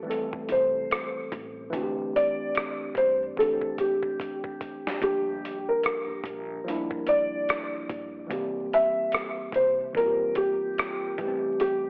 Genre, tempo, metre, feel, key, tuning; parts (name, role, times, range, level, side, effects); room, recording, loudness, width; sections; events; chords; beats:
lo-fi hip hop; 73 BPM; 4/4; swing 59% on 16ths; G dorian; A4 = 440 Hz
felt-muted upright piano; melody; 0.0-11.9 s; G4 to E5; -25 LUFS; equal; low-pass filter, analog delay
mellow tine electric piano; accompaniment; 0.0-11.9 s; E3 to A4; -33 LUFS; equal; medium stereo tremolo, low-pass filter, cassette tape
dusty soul sampler-style drum kit; drums; 0.1-11.8 s; hi-hat, kick drum, rim click, snare drum; -32 LUFS; equal; vintage 12-bit sampler grit, cassette tape
upright bass; bass; 0.5-11.9 s; G1 to G2; -43 LUFS; equal
light reverb, digital ambience; home recording on cassette, vinyl crackle, telephone sound; -24 LUFS; side -30 dB against mid
0.0-11.9 A section
drum fill 3.4-5.0
0.0 Am7; 1.7 D9sus4; 5.0 Gm7; 8.3 C7; 11.2 Am7
0.09 0.91 | 1.73 2.55 3.37 4.20 | 5.02 5.84 6.66 7.48 | 8.31 9.13 9.95 10.77 | 11.59